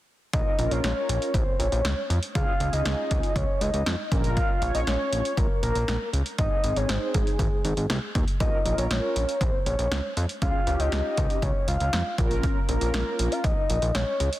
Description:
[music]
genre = synth-pop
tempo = 119 BPM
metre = 4/4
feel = straight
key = Bb dorian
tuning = A4 = 440 Hz
[part]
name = soft octave-layered synth lead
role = melody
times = 0.3-14.3 s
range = Ab4 to F5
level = -29 LUFS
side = equal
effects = chorus, tremolo, digital delay
[part]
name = mellow synth brass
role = accompaniment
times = 0.3-13.4 s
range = C4 to Db5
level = -34 LUFS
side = equal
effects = chorus
[part]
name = fat analog bass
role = bass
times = 0.3-14.3 s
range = Ab1 to F2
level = -27 LUFS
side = equal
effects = none
[part]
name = punchy analog drum machine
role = drums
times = 0.3-14.4 s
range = hi-hat, kick drum, snare drum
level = -27 LUFS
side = equal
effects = none
[sound]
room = light reverb, digital ambience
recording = dense, heavily limited modern master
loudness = -23 LUFS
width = side -15 dB against mid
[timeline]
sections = 0.3-14.4 A section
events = none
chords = 0.3 Bbm; 2.4 Db; 4.1 Bbm; 6.4 Ab; 8.4 Bbm; 10.4 Db; 12.2 Bbm

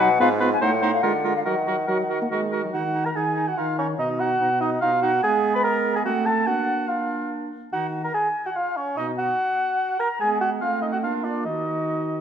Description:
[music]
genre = quick classical-period movement for wind quintet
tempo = 144 BPM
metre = 3/4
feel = straight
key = Eb minor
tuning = A4 = 445 Hz
[part]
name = mellow hollow silver concert flute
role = melody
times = 0.0-12.2 s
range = Db5 to Cb6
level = -28 LUFS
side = left 6 dB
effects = none
[part]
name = warm oboe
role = second line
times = 0.0-12.2 s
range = Bb4 to Cb6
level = -27 LUFS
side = left 1 dB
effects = none
[part]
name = bright clarinet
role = accompaniment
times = 0.0-12.2 s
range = Cb4 to Gb4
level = -30 LUFS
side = right 7 dB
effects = none
[part]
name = mellow French horn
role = accompaniment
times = 0.0-12.2 s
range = B2 to Cb4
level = -28 LUFS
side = right 1 dB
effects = none
[part]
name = warm bassoon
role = bass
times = 0.0-12.2 s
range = Ab2 to Cb5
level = -25 LUFS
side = right 3 dB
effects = none
[sound]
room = wet recital hall reverb, RT60 1.7 s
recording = minimal, uncompressed stereo recording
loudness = -21 LUFS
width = side -8 dB against mid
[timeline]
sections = 0.0-2.7 A section; 2.7-12.2 B section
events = none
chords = 0.2 Fdim/Ab; 0.6 Adim7; 1.0 Bb7/D; 1.5 Ebm; 4.0 B; 5.2 Abmadd9; 6.1 Am6; 6.5 Bb; 7.7 Ebm; 9.0 B; 10.2 Abm7; 10.6 Adim7; 11.0 Bb; 11.5 Ebm

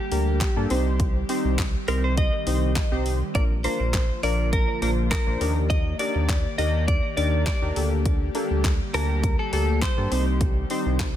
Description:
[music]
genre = dance-pop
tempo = 102 BPM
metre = 4/4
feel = straight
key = unclear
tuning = A4 = 435 Hz
[part]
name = direct-recorded clean electric guitar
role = melody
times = 0.0-10.2 s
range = G4 to Eb5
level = -29 LUFS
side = equal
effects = analog chorus, ping-pong delay
[part]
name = airy breathy pad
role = sustained chords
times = 0.0-11.2 s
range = D3 to D5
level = -32 LUFS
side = equal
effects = chorus, sidechain pumping
[part]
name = warm analog keys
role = accompaniment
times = 0.1-11.1 s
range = Bb3 to A5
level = -29 LUFS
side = left 1 dB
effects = chorus, sidechain pumping
[part]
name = round analog bass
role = bass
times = 0.1-11.2 s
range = Bb1 to G2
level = -24 LUFS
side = equal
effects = sidechain pumping
[part]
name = pop drum kit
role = drums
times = 0.1-11.1 s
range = handclaps, hi-hat, kick drum, snare drum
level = -25 LUFS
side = equal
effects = none
[sound]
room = digital ambience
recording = none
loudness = -21 LUFS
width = side -11 dB against mid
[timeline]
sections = 0.0-11.2 A section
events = none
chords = 0.0 Gmadd9/D; 0.7 Cm; 3.4 Bb; 5.4 Ebmaj7; 7.8 Gmadd9/D; 10.1 Cm

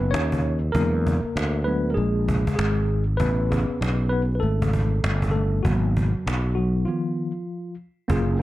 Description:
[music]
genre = hip hop, jazz-hop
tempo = 98 BPM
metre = 4/4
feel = swing 62% on 16ths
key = unclear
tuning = A4 = 440 Hz
[part]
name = mellow tine electric piano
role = accompaniment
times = 0.0-8.4 s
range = D#3 to C#5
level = -26 LUFS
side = left 1 dB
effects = medium stereo tremolo
[part]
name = sustaining fretless electric bass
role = bass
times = 0.0-8.4 s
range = F#1 to E2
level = -22 LUFS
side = equal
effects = none
[part]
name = cajon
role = drums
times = 0.1-8.3 s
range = none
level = -28 LUFS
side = equal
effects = none
[sound]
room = light reverb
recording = dark, warm production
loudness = -21 LUFS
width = side -16 dB against mid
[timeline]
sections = 0.0-8.1 A section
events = tine electric piano solo 0.0-8.1; break 6.9-8.1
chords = 0.0 Badd9(#11); 0.7 E7; 3.2 Amaj9; 5.6 G#m7; 6.9 D#sus2

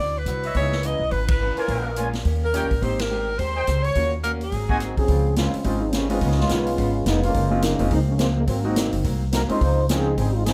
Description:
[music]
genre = jazz, big band swing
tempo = 212 BPM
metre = 4/4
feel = swing 60% on 8ths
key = Ab major, Db major from 5.1 s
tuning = A4 = 441 Hz
[part]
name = clear saxophone section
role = melody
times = 0.0-4.9 s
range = Ab4 to Eb5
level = -28 LUFS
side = equal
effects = none
[part]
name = picked old ladder-braced acoustic guitar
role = accompaniment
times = 0.0-10.5 s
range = Gb2 to G4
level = -33 LUFS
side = equal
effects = none
[part]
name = upright bass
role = bass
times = 0.0-10.5 s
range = F1 to Eb2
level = -26 LUFS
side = equal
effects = none
[part]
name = swinging big-band drum kit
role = drums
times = 0.3-10.5 s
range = hi-hat, kick drum, ride cymbal, rim click, snare drum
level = -30 LUFS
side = equal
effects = none
[part]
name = mellow trumpet section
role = stabs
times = 0.4-4.8 s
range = Eb4 to Ab5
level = -32 LUFS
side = equal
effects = none
[part]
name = clear concert grand piano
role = accompaniment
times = 0.6-10.1 s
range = Ab3 to Ab4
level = -31 LUFS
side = equal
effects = none
[part]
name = muted trombone section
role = second line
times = 4.8-10.5 s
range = C3 to C5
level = -27 LUFS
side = equal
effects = none
[sound]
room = light reverb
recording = close, detailed microphones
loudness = -22 LUFS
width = mono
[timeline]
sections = 0.0-5.1 A section; 5.1-10.5 B section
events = band accent 1.3, 3.0; trombone section solo 5.1-10.5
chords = 0.0 D9; 0.5 Dbm9; 1.7 Bbm7; 2.2 Eb7; 2.8 Abmaj7; 4.0 Ebm7; 4.5 Ab7; 5.1 Dbmaj7; 6.2 Db7; 7.3 Gbmaj9#11; 8.5 Ab9; 9.6 Dbmaj9

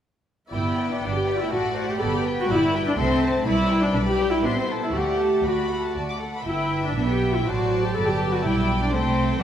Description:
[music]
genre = quick classical-period movement for string orchestra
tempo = 122 BPM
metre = 3/4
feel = rubato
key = G major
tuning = A4 = 436 Hz
[part]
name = rich studio violin section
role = melody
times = 0.5-9.4 s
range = D5 to D6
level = -32 LUFS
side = left 2 dB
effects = none
[part]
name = clear studio violin section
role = second line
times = 0.5-9.4 s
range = F#4 to G5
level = -31 LUFS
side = left 4 dB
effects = none
[part]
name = rich studio viola section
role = accompaniment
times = 0.5-9.4 s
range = C4 to A4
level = -23 LUFS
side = left 1 dB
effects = none
[part]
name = dark studio double bass section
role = bass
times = 0.5-9.4 s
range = G1 to D2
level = -28 LUFS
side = right 2 dB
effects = none
[part]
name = rich studio cello section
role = bass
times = 0.5-9.4 s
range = F#3 to B3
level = -28 LUFS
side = right 2 dB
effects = none
[sound]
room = moderate concert hall reverb, RT60 2.1 s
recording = none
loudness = -20 LUFS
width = side -10 dB against mid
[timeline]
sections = 0.5-9.4 A section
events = none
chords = 0.5 G; 1.5 D7/A; 2.0 G; 3.0 Am/C; 3.5 G/B; 4.4 Am; 4.9 D; 6.5 G; 7.5 D7/A; 7.9 G; 8.9 Am/C

